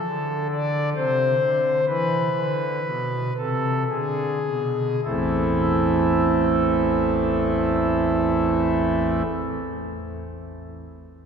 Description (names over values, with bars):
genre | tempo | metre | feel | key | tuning
classical, chorale-style piece for pipe organ | 52-69 BPM | 3/4 | rubato | A minor | A4 = 442 Hz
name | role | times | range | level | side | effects
pipe organ, foundations | solo | 0.0-9.2 s | A1 to D5 | -20 LUFS | equal | none
room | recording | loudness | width
wet cathedral reverb, RT60 4.4 s | recorded in a church or concert hall | -20 LUFS | side -6 dB against mid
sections
0.0-5.0 A section; 5.0-8.5 B section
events
slowing down 0.0-5.0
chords
0.0 D5; 1.9 E7; 5.0 Am